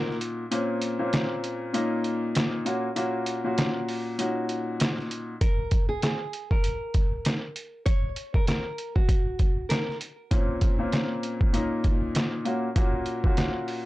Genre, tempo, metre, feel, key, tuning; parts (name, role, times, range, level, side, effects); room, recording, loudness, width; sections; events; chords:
hip hop, boom-bap hip-hop; 98 BPM; 4/4; swing 58% on 16ths; Bb minor; A4 = 440 Hz
nylon-string guitar; melody; 0.0-0.2, 5.4-10.0 s; Gb4 to Db5; -33 LUFS; equal; high-pass filter, low-pass filter, ping-pong delay
warm upright piano; accompaniment; 0.0-5.3, 10.3-13.9 s; Bb2 to Gb4; -27 LUFS; left 1 dB; cassette tape, high-pass filter, low-pass filter
trip hop sampler-style drum kit; drums; 0.1-13.8 s; hi-hat, kick drum, snare drum; -25 LUFS; equal; overdrive
light reverb; dark, warm production; -24 LUFS; side -18 dB against mid
0.0-13.9 A section
break 0.0-5.4
0.0 Ebm7/Bb; 0.5 Bbmadd9; 1.7 Bbmadd11; 2.7 Gb/Bb; 4.2 Ebm7/Bb; 5.4 N.C.; 10.3 Bbmadd9; 11.5 Bbmadd11; 12.5 Gb/Bb